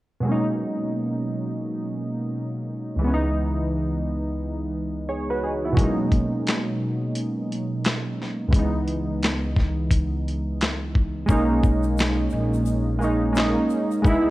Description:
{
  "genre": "lo-fi hip hop",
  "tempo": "87 BPM",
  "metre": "4/4",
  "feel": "swing 60% on 16ths",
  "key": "B major",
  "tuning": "A4 = 440 Hz",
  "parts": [
    { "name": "warm analog keys", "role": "accompaniment", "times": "0.2-14.3 s", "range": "C#2 to C#5", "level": "-23 LUFS", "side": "right 1 dB", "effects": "chorus, cassette tape, low-pass filter" },
    { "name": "dusty soul sampler-style drum kit", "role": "drums", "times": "5.8-14.2 s", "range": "handclaps, hi-hat, kick drum, snare drum", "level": "-22 LUFS", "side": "equal", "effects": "none" },
    { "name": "upright bass", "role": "bass", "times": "11.3-14.3 s", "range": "A#1 to C#2", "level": "-25 LUFS", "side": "equal", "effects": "none" },
    { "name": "egg shaker", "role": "percussion", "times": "11.3-14.2 s", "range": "none", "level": "-49 LUFS", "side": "left 8 dB", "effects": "none" }
  ],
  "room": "light reverb",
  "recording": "cassette tape",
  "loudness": "-21 LUFS",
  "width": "side -17 dB against mid",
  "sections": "0.3-11.3 A section; 11.3-14.3 B section",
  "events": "hi-hats muted 11.3-14.3",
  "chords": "0.3 Bmaj13; 3.0 C#m9; 5.8 Bmaj13; 8.5 C#m9; 11.3 Bmaj13"
}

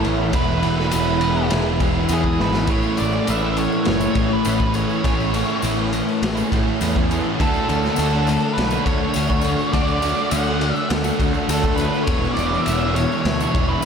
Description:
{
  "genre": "rock, shoegaze and dream pop",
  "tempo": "102 BPM",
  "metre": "4/4",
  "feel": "straight",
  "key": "A major",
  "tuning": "A4 = 440 Hz",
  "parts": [
    { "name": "ethereal airy pad", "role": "sustained chords", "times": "0.0-2.7, 13.0-13.8 s", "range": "G#4 to B5", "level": "-33 LUFS", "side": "right 1 dB", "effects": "ensemble chorus, built-in reverb" },
    { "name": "fingerpicked twelve-string acoustic guitar", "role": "arpeggios", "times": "0.0-13.8 s", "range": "E3 to A4", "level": "-30 LUFS", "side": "right 1 dB", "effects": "ensemble chorus, ping-pong delay" },
    { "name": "distorted electric guitar", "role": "riff", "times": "0.0-13.8 s", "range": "E2 to D4", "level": "-26 LUFS", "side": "left 1 dB", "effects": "distortion" },
    { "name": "overdriven semi-hollow guitar", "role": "riff", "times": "0.0-13.8 s", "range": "E2 to F#4", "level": "-26 LUFS", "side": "right 8 dB", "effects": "reverse reverb" },
    { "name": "thick fuzz guitar", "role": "riff", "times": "0.0-13.8 s", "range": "E2 to D4", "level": "-26 LUFS", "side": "left 6 dB", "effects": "distortion, analog chorus" },
    { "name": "fuzz picked electric bass", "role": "bass", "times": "0.0-13.7 s", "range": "E1 to E2", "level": "-24 LUFS", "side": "equal", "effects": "overdrive" },
    { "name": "raw garage drum kit", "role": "drums", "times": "0.0-13.7 s", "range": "kick drum, ride cymbal, snare drum", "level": "-24 LUFS", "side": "equal", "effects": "none" },
    { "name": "octave-fuzz lead guitar", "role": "melody", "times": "0.4-13.8 s", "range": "G#4 to F#5", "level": "-25 LUFS", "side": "right 1 dB", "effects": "distortion, ping-pong delay" },
    { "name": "tambourine", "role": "percussion", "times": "0.9-13.8 s", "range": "none", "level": "-37 LUFS", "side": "left 11 dB", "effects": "none" }
  ],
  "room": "wet cathedral reverb, RT60 4.7 s",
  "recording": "dreamy mix soaked in reverb",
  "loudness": "-17 LUFS",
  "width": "side -6 dB against mid",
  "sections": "0.0-2.7 A section; 2.7-13.8 B section",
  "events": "drum fill 2.4",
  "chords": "0.3 E; 2.7 Amaj9; 7.4 Dmaj7; 12.1 E7sus4"
}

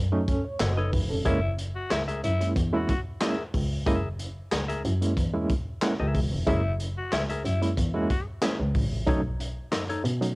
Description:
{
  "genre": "funk",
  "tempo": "92 BPM",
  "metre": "4/4",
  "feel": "straight",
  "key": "F# mixolydian",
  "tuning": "A4 = 439 Hz",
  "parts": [
    { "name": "clear double bass", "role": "bass", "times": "0.0-10.2 s", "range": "E1 to B2", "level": "-28 LUFS", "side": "equal", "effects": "tube saturation" },
    { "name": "barky reed electric piano", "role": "stabs", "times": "0.1-10.3 s", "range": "F#3 to D#5", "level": "-28 LUFS", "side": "right 2 dB", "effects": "overdrive, fast tremolo, cassette tape" },
    { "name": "crunchy breakbeat drum kit", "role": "drums", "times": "0.3-10.4 s", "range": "handclaps, hi-hat, kick drum, snare drum", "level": "-30 LUFS", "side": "equal", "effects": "cassette tape" },
    { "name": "semi-hollow electric guitar", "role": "accompaniment", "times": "0.6-10.0 s", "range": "D#4 to F#5", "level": "-32 LUFS", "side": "left 2 dB", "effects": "cassette tape" },
    { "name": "raspy tenor saxophone", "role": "second line", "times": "1.3-8.2 s", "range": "E4 to F#4", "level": "-32 LUFS", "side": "left 2 dB", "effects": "cassette tape" }
  ],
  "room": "little or no reverb",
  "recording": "home recording on cassette",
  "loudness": "-24 LUFS",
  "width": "side -24 dB against mid",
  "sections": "0.0-10.4 A section",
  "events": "none",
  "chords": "0.0 B9; 1.3 F#9; 9.1 B9"
}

